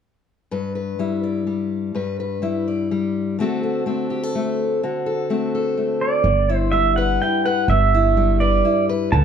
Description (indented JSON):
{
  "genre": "folk",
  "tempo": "126 BPM",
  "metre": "3/4",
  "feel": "straight",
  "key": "G major",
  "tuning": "A4 = 439 Hz",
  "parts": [
    { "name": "fingerpicked steel-string acoustic guitar", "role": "accompaniment", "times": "0.5-9.2 s", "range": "G2 to D5", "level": "-21 LUFS", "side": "left 4 dB", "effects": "none" },
    { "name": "pedal steel guitar", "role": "melody", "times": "6.0-9.2 s", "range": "D5 to A5", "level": "-19 LUFS", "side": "right 5 dB", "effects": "none" },
    { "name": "upright bass", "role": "bass", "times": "6.2-9.2 s", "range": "G1 to D2", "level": "-19 LUFS", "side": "right 1 dB", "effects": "none" }
  ],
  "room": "moderate large studio reverb, RT60 1.2 s",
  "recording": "dark, warm production",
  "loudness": "-18 LUFS",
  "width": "side -8 dB against mid",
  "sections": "0.5-6.2 A section; 6.2-9.2 B section",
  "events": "none",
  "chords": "0.5 G6; 3.4 D7; 6.2 G6",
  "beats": "| 0.51 0.99 1.47 | 1.95 2.42 2.90 | 3.38 3.86 4.34 | 4.81 5.29 5.77 | 6.25 6.73 7.20 | 7.68 8.16 8.64 | 9.12"
}